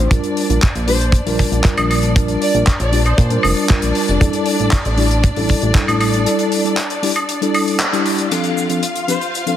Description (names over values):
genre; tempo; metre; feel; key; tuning
nu-disco, nu disco; 117 BPM; 4/4; straight; D minor; A4 = 440 Hz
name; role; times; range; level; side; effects
mellow tine electric piano; accompaniment; 0.0-9.6 s; F3 to Bb4; -20 LUFS; left 1 dB; medium stereo tremolo, ping-pong delay
warm studio string section; sustained chords; 0.0-9.6 s; C4 to F5; -23 LUFS; left 1 dB; sidechain pumping
chorused synth bass; bass; 0.0-6.3 s; F1 to Bb2; -18 LUFS; equal; none
damped 70s drum kit; drums; 0.1-9.6 s; crash cymbal, handclaps, hi-hat, shaker, woodblock; -21 LUFS; left 1 dB; none
kick drum; drums; 0.1-5.9 s; none; -15 LUFS; equal; none
dark studio violin section; melody; 0.9-3.3, 9.1-9.2 s; C5 to D5; -23 LUFS; right 1 dB; ping-pong delay
room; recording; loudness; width
moderate plate reverb, RT60 2.2 s; heavily compressed radio sound, multiband compression; -14 LUFS; side -11 dB against mid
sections
0.0-8.3 A section; 8.3-9.6 B section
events
band accent 7.8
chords
0.1 Bb6; 4.2 A7sus4; 8.3 Dm7